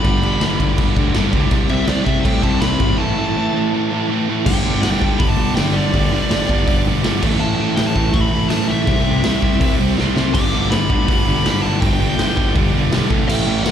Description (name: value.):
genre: punk rock.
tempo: 163 BPM.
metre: 4/4.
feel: straight.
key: unclear.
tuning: A4 = 441 Hz.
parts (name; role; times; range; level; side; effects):
dark smooth lead guitar; melody; 0.0-13.7 s; D5 to D6; -24 LUFS; left 1 dB; overdrive, slapback echo.
biting overdriven guitar; riff; 0.0-13.7 s; G2 to C5; -29 LUFS; equal; none.
overdriven electric guitar; riff; 0.0-13.7 s; G2 to C4; -22 LUFS; right 13 dB; slapback echo.
sludgy distorted guitar; riff; 0.0-13.7 s; G2 to C4; -23 LUFS; left 10 dB; overdrive.
fuzz picked electric bass; bass; 0.0-13.7 s; G1 to A2; -20 LUFS; equal; overdrive.
raw garage drum kit; drums; 0.0-13.7 s; crash cymbal, hi-hat, kick drum, snare drum; -19 LUFS; equal; none.
room: studio ambience.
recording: live gig heard through the venue's PA, recital hall reverb.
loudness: -14 LUFS.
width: side -9 dB against mid.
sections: 0.0-4.5 A section; 4.5-13.7 B section.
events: break 3.0-4.5; drum fill 10.0-10.3.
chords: 0.0 G; 1.5 C; 3.0 A; 4.5 G; 7.2 A; 8.9 C; 10.3 G; 13.1 A.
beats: | 0.04 0.41 0.78 1.15 | 1.52 1.89 2.25 2.62 | 2.99 3.36 3.73 4.10 | 4.47 4.83 5.20 5.57 | 5.94 6.31 6.67 7.04 | 7.41 7.78 8.15 8.51 | 8.88 9.25 9.62 9.98 | 10.35 10.72 11.09 11.45 | 11.82 12.19 12.55 12.92 | 13.29 13.65.